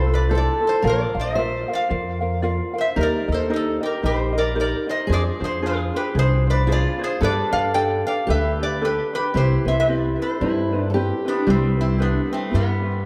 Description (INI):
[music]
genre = Hawaiian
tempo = 113 BPM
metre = 4/4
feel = swing 59% on 8ths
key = C major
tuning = A4 = 439 Hz
[part]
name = metal-body resonator slide guitar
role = melody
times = 0.0-13.1 s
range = G3 to G5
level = -26 LUFS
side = equal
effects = tape echo
[part]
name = fingerpicked steel-string acoustic guitar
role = second line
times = 0.0-13.1 s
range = G3 to C5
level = -29 LUFS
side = equal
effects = none
[part]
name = ukulele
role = accompaniment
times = 0.0-13.0 s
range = C4 to F5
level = -28 LUFS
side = equal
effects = none
[part]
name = upright bass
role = bass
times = 0.0-13.1 s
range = Bb1 to G2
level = -25 LUFS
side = equal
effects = none
[sound]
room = wet recital hall reverb, RT60 1.7 s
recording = dark, warm production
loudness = -21 LUFS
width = mono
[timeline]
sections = 0.0-11.5 A section; 11.5-13.1 B section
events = none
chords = 0.0 Fmaj7; 0.8 Bb; 3.0 Eb; 5.1 Fm6; 7.2 Gadd9; 9.3 Cmaj7